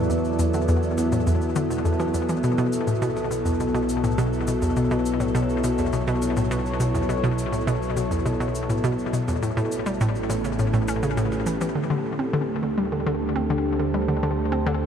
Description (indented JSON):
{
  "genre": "ambient, sequencer-driven space music",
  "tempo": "103 BPM",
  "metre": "4/4",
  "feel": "straight",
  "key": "D minor from 11.8 s",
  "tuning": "A4 = 440 Hz",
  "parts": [
    { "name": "evolving wavetable pad", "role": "sustained chords", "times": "0.0-14.9 s", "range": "F#3 to F5", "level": "-25 LUFS", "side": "equal", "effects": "chorus, built-in reverb" },
    { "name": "hollow square pluck", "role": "riff", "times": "0.0-14.8 s", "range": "E2 to C#4", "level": "-24 LUFS", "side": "equal", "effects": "chorus, ping-pong delay" },
    { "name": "analog drone", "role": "bass", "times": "0.0-14.9 s", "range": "A1 to E2", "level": "-30 LUFS", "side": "equal", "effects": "chorus" },
    { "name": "cabasa and percussion blips", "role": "percussion", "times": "0.1-11.7 s", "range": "none", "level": "-40 LUFS", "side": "left 2 dB", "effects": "ping-pong delay" },
    { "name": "bubbling stepped-filter texture", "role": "texture", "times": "11.8-14.9 s", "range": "A4", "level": "-35 LUFS", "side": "right 4 dB", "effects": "chorus, built-in reverb" }
  ],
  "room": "wet huge ambient reverb, RT60 7.8 s",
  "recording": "in a vast, echoing space",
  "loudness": "-21 LUFS",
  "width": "side -8 dB against mid",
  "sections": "0.0-11.8 A section; 11.8-14.9 B section",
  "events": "none",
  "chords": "0.0 E5; 2.4 B5; 9.4 A7; 11.8 Dm"
}